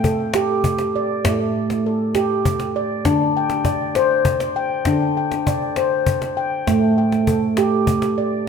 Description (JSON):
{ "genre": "world meditative, meditative tuned percussion", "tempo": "66 BPM (dotted quarters)", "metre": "6/8", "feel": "straight", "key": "unclear", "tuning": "A4 = 440 Hz", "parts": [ { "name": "handpan", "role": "arpeggios", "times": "0.0-8.5 s", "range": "A2 to G5", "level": "-18 LUFS", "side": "equal", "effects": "diffuse ambient delay" }, { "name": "cajon", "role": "percussion", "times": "0.0-8.2 s", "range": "none", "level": "-24 LUFS", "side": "left 2 dB", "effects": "none" } ], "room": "wet recital hall reverb, RT60 1.6 s, small room ambience", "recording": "none", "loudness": "-17 LUFS", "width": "side -6 dB against mid", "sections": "0.0-8.5 A section", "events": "none", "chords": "0.0 A7sus4; 3.1 D7sus4; 6.7 A7sus4" }